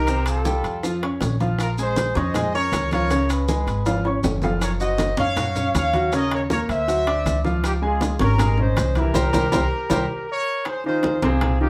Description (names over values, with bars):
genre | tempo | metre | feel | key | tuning
latin, salsa | 159 BPM | 4/4 | straight | F minor | A4 = 439 Hz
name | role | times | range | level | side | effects
mellow trumpet section | melody | 0.0-11.7 s | Eb4 to F5 | -27 LUFS | equal | none
clear baby grand piano | accompaniment | 0.0-11.7 s | C3 to D6 | -27 LUFS | equal | none
upright bass | bass | 0.0-11.7 s | Gb1 to Gb2 | -26 LUFS | equal | none
bongos | percussion | 0.1-11.7 s | none | -35 LUFS | equal | none
congas | percussion | 0.1-11.7 s | none | -30 LUFS | equal | none
maracas | percussion | 0.1-10.0 s | none | -39 LUFS | equal | none
timbales | percussion | 0.1-11.6 s | none | -32 LUFS | equal | none
room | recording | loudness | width
wet small room reverb, RT60 0.5 s | heard from further back in the room | -22 LUFS | mono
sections
0.0-10.7 A section; 10.7-11.7 B section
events
drum fill 3.9-4.6, 9.5-10.7; band accent 9.2-10.7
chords
0.1 C5; 0.8 Bbm; 1.6 Bbm9; 3.1 Db; 4.6 Gbmaj7(no3); 6.1 Eb5; 6.9 D9; 7.6 Dbmaj9; 9.2 C5; 10.7 Fm7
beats
| 0.08 0.46 0.84 1.22 | 1.59 1.97 2.35 2.73 | 3.11 3.49 3.86 4.24 | 4.62 5.00 5.38 5.75 | 6.13 6.51 6.89 7.26 | 7.64 8.02 8.40 8.77 | 9.15 9.53 9.91 10.28 | 10.66 11.04 11.42